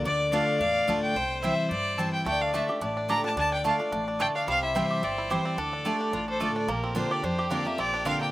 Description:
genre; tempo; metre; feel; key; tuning
bluegrass; 217 BPM; 4/4; swing 55% on 8ths; D minor; A4 = 440 Hz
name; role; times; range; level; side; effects
clear fiddle; second line; 0.0-8.3 s; F4 to D5; -31 LUFS; left 2 dB; none
picked steel-string acoustic guitar; accompaniment; 0.0-8.3 s; F2 to F4; -31 LUFS; left 1 dB; none
upright bass; bass; 0.0-8.1 s; G1 to G2; -38 LUFS; equal; none
rich fiddle; melody; 0.1-8.3 s; Bb4 to Bb5; -29 LUFS; equal; none
mandolin; stabs; 0.3-8.2 s; A3 to C6; -32 LUFS; right 5 dB; slapback echo
bluegrass banjo; melody; 2.3-8.3 s; G3 to G4; -32 LUFS; right 3 dB; slapback echo
room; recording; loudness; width
little or no reverb; recorded outdoors, with no room sound; -24 LUFS; side -16 dB against mid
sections
0.0-6.7 A section; 6.7-8.3 B section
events
none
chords
0.1 Dm; 1.2 C; 2.3 Dm; 4.5 C; 5.6 Dm; 6.7 Bbadd9

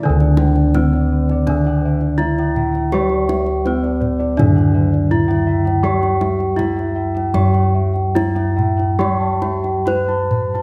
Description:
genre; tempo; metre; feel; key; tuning
Javanese gamelan; 64-83 BPM; 4/4; straight; unclear; A4 = 438 Hz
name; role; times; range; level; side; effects
gamelan-type bronze metallophone; melody; 0.0-10.6 s; C4-45c to C5-45c; -23 LUFS; equal; none
gamelan-type bronze metallophone; accompaniment; 0.0-10.6 s; D3 to G3-35c; -24 LUFS; equal; none
gamelan-type bossed gongs; arpeggios; 0.0-10.6 s; C5-45c to C6-45c; -31 LUFS; equal; none
gamelan-type bronze metallophone; arpeggios; 0.0-10.6 s; C5-45c to C6-45c; -28 LUFS; equal; none
gamelan-type bossed gongs; bass; 0.0-10.6 s; D2 to G4-35c; -21 LUFS; equal; none
kendang; percussion; 0.2-10.6 s; none; -28 LUFS; equal; none
room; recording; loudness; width
moderate scoring stage reverb, RT60 1.6 s; none; -17 LUFS; mono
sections
0.0-10.6 A section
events
none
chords
none

